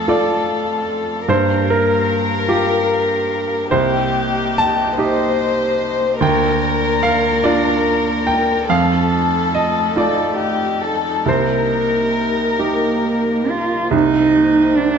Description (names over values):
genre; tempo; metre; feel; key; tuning
neoclassical piano and strings; 45-50 BPM (dotted quarters); 6/8; rubato; C dorian; A4 = 439 Hz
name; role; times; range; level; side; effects
warm chamber violin section; melody; 0.0-13.7 s; G4 to C5; -19 LUFS; left 4 dB; none
bright baby grand piano; accompaniment; 0.0-15.0 s; C2 to A5; -18 LUFS; right 2 dB; none
warm chamber string section; sustained chords; 0.0-15.0 s; A3 to F5; -25 LUFS; left 1 dB; none
dark cello; second line; 12.6-15.0 s; Bb3 to F4; -15 LUFS; right 3 dB; none
room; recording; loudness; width
moderate recital hall reverb, RT60 1.5 s; dark, warm production, nothing above 7.8 kHz; -14 LUFS; side -6 dB against mid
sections
0.0-13.9 A section; 13.9-15.0 A section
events
none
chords
0.0 F7; 1.3 Gm7; 3.7 Cm7; 6.2 Bb6/D; 8.7 F7; 11.3 Cm7